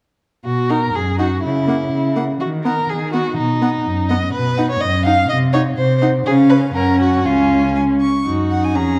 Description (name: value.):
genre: quick classical-period movement for string quartet.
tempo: 124 BPM.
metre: 2/4.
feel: straight.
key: B major.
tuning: A4 = 440 Hz.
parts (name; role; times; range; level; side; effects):
warm violin; second line; 0.5-9.0 s; D#4 to E#5; -22 LUFS; equal; none.
warm cello; bass; 0.5-9.0 s; C#2 to D#3; -21 LUFS; equal; none.
rich violin; melody; 0.7-9.0 s; E#5 to C#6; -30 LUFS; equal; none.
rich viola; accompaniment; 0.7-9.0 s; A#3 to D#4; -21 LUFS; equal; none.
room: wet recital hall reverb, RT60 1.5 s.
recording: dark, warm production.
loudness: -17 LUFS.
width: mono.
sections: 0.5-8.3 A section.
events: none.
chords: 0.5 B; 1.4 F#7/C# (rootless); 2.4 B/D#; 3.4 B; 5.3 Cm; 6.3 C#; 6.8 F#; 7.3 C#; 8.3 D#madd11/F#.